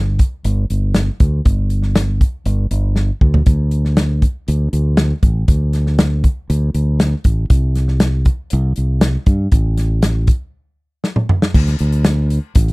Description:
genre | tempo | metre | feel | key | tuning
folk rock and heartland rock | 119 BPM | 4/4 | straight | unclear | A4 = 440 Hz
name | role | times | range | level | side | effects
fingered electric bass | bass | 0.0-12.7 s | G1 to G2 | -15 LUFS | equal | none
natural country drum kit | drums | 0.2-12.7 s | crash cymbal, hi-hat, kick drum, snare drum, toms | -14 LUFS | equal | none
room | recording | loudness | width
little or no reverb | dry, close 1970s-style studio recording | -13 LUFS | side -26 dB against mid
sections
0.0-11.5 A section; 11.5-12.7 B section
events
drum fill 3.0-3.5, 11.0-11.5; break 10.5-11.5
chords
none

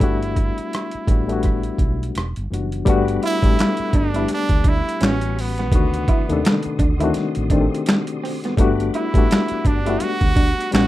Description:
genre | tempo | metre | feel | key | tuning
R&B, neo-soul | 84 BPM | 4/4 | swing 60% on 16ths | unclear | A4 = 440 Hz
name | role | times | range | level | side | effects
clear trumpet | melody | 0.0-10.9 s | B3 to F#4 | -26 LUFS | right 3 dB | none
barky reed electric piano | accompaniment | 0.0-10.9 s | C3 to A4 | -22 LUFS | left 5 dB | overdrive, fast tremolo
woody fretless electric bass | bass | 0.0-10.9 s | E1 to Eb2 | -24 LUFS | equal | none
boom bap sampler-style drum kit | drums | 0.0-10.9 s | finger snaps, hi-hat, kick drum, rim click, snare drum | -19 LUFS | equal | overdrive
tonewheel organ | sustained chords | 2.9-10.9 s | G3 to Eb6 | -36 LUFS | equal | slow rotary speaker, overdrive, chorus vibrato
electric guitar through a small old amp | second line | 3.2-10.9 s | B3 to E4 | -26 LUFS | right 3 dB | none
room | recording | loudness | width
light reverb | rough home demo mix | -17 LUFS | side -15 dB against mid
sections
0.0-2.9 A section; 2.9-10.9 B section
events
none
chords
0.0 Gmaj9; 2.1 Em9; 2.9 Gmaj7; 5.0 A13; 5.7 D7b9; 8.6 Gmaj7

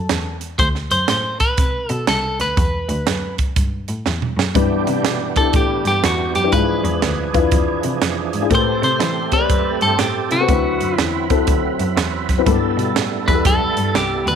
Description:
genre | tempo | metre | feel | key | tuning
uptempo gospel | 121 BPM | 4/4 | swing 64% on 8ths | G major | A4 = 440 Hz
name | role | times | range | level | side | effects
clean electric guitar | melody | 0.0-14.4 s | F#4 to C5 | -20 LUFS | left 1 dB | none
rich cello | bass | 0.0-14.4 s | C2 to E3 | -23 LUFS | left 1 dB | none
crisp fusion drum kit | drums | 0.1-14.4 s | hi-hat, kick drum, snare drum, toms | -20 LUFS | right 2 dB | none
overdriven tonewheel organ | sustained chords | 4.5-14.4 s | E3 to B4 | -23 LUFS | right 10 dB | slow rotary speaker, chorus vibrato
dark upright piano | accompaniment | 4.6-13.9 s | G2 to D5 | -21 LUFS | left 13 dB | none
room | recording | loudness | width
light reverb, studio reverb | 1960s-style stereo with parts hard left and right | -16 LUFS | side -8 dB against mid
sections
0.0-14.4 A section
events
drum fill 4.1-4.5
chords
0.0 A5; 0.6 D5; 2.6 Emadd9; 4.5 G6; 6.5 E7b9; 8.5 Am9; 10.5 D13; 12.5 G69

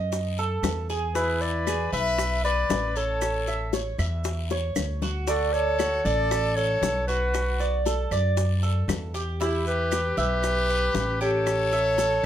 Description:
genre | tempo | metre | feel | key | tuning
latin, Cuban son and guajira | 116 BPM | 4/4 | straight | unclear | A4 = 443 Hz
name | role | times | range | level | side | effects
Cuban tres | arpeggios | 0.0-12.2 s | D4 to E5 | -30 LUFS | right 4 dB | none
upright bass | bass | 0.0-12.3 s | A1 to F#2 | -28 LUFS | equal | none
bongos | percussion | 0.1-12.2 s | none | -32 LUFS | left 7 dB | none
guiro | percussion | 0.1-12.3 s | none | -41 LUFS | left 6 dB | none
maracas | percussion | 0.1-12.2 s | none | -39 LUFS | right 2 dB | none
claves | percussion | 0.6-11.7 s | none | -40 LUFS | right 4 dB | none
mellow clarinet | melody | 1.1-12.3 s | G4 to E5 | -26 LUFS | equal | none
brilliant trumpet | second line | 1.1-12.3 s | E4 to B4 | -31 LUFS | left 3 dB | none
room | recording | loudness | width
moderate studio reverb, RT60 0.6 s | none | -23 LUFS | side -10 dB against mid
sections
0.0-12.3 A section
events
drum fill 4.5-5.3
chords
0.0 B7 (rootless); 1.2 E7(no3); 3.2 A; 5.3 Dmaj7; 7.3 Bm7; 9.4 Em; 11.5 A7

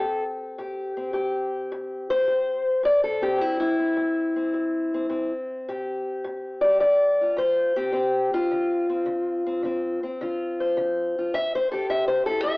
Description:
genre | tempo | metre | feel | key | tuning
acoustic country blues, solo or duo | 106 BPM | 4/4 | swing 68% on 8ths | A minor | A4 = 436 Hz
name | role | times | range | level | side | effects
fingerpicked steel-string acoustic guitar | solo | 0.0-12.6 s | A2 to E5 | -22 LUFS | left 1 dB | cassette tape
room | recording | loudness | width
moderate spring reverb, RT60 1.8 s, small room ambience | home recording on cassette, AM radio sound | -22 LUFS | side -24 dB against mid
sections
0.0-12.6 A section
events
steel-string acoustic guitar solo 0.0-12.6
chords
0.0 Am7; 6.8 Dm7; 11.3 Am7

